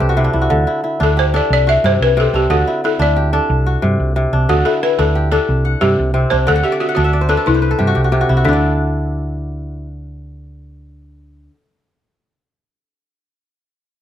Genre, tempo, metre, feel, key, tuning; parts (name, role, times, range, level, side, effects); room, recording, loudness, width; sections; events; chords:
west african traditional, West African string and xylophone music; 121 BPM (dotted quarters); 12/8; straight; D mixolydian; A4 = 437 Hz
kora; arpeggios; 0.0-11.6 s; C3 to G5; -18 LUFS; equal
hollow-body short-scale fingered electric bass; bass; 0.0-11.5 s; C2 to G2; -17 LUFS; equal
balafon; melody; 1.0-11.5 s; D4 to E5; -17 LUFS; left 2 dB; plate reverb
light reverb; close, detailed microphones; -13 LUFS; side -10 dB against mid
0.0-8.5 A section; 8.5-12.4 B section
kora fill 0.0-0.5, 6.5-8.5
0.0 C5; 0.5 D5; 1.5 C5; 2.5 D; 3.5 C5; 4.5 D5; 5.5 C5; 6.5 D; 7.5 C; 8.5 D